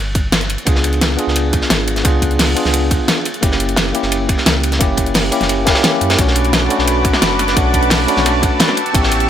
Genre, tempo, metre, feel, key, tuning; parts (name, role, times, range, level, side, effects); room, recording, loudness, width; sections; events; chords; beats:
liquid drum and bass; 174 BPM; 4/4; straight; B minor; A4 = 440 Hz
sub bass with octave; bass; 0.0-9.3 s; F#1 to F#2; -19 LUFS; equal
crunchy breakbeat drum kit; drums; 0.1-9.3 s; hi-hat, ride cymbal, snare drum; -19 LUFS; equal; high-pass filter on cymbals, high-pass filter on hats, high-pass filter on snare, high-pass filter on room
pop drum kit; drums; 0.1-9.3 s; hi-hat, snare drum; -18 LUFS; equal
electronic kick drum; drums; 0.2-9.0 s; -17 LUFS; equal
tine electric piano; accompaniment; 0.7-9.3 s; A3 to G#4; -18 LUFS; equal; medium stereo tremolo, digital delay
lush unison pad; sustained chords; 6.2-9.3 s; F#4 to E6; -18 LUFS; equal; chorus, vintage 12-bit sampler grit
light reverb, small room ambience; -12 LUFS; side -10 dB against mid
0.0-9.3 A section
0.0 N.C.; 0.7 C#7b9; 3.3 F#7b9; 6.2 Bm7; 8.8 A7
0.33 | 0.67 1.01 1.36 1.70 | 2.05 2.39 2.74 3.08 | 3.43 3.77 4.12 4.46 | 4.81 5.15 5.50 5.84 | 6.19 6.53 6.88 7.22 | 7.57 7.91 8.26 8.60 | 8.95 9.29